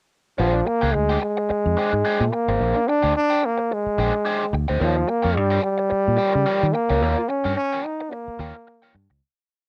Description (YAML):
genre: funk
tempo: 109 BPM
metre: 4/4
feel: swing 56% on 16ths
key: Bb mixolydian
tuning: A4 = 440 Hz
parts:
  - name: bright trombone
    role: melody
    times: 0.4-8.9 s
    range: F3 to Eb4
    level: -23 LUFS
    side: equal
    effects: none
  - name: crunchy overdriven guitar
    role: accompaniment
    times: 0.4-9.1 s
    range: D4 to G5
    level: -29 LUFS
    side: equal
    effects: wah, cassette tape
  - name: fingered electric bass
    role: bass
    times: 0.4-9.2 s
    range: Ab1 to Eb3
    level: -25 LUFS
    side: equal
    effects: none
room: little or no reverb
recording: home recording on cassette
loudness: -21 LUFS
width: mono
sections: 0.4-9.2 A section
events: fade-out 7.0-9.2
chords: 0.4 Bb13; 4.8 Eb9